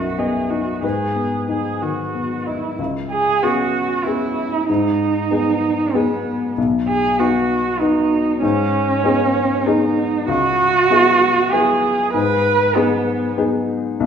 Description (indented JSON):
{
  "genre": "neoclassical piano and strings",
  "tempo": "96 BPM",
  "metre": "3/4",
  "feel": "rubato",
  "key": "G# minor",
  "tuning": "A4 = 435 Hz",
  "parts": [
    { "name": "muted cello", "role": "second line", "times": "0.0-13.4 s", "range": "B3 to B4", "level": "-18 LUFS", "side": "right 3 dB", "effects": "none" },
    { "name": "dark upright piano", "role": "accompaniment", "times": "0.0-14.1 s", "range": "B1 to E5", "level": "-20 LUFS", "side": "left 3 dB", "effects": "none" }
  ],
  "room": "wet recital hall reverb, RT60 1.5 s",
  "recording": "recorded in a church or concert hall",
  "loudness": "-16 LUFS",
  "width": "side -7 dB against mid",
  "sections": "0.0-2.8 A section; 2.8-14.1 A section",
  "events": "none",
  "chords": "0.0 B; 0.8 G#m; 2.8 C#m7; 4.7 G#m; 6.6 B; 8.4 G#m; 10.3 C#m7; 12.1 G#m"
}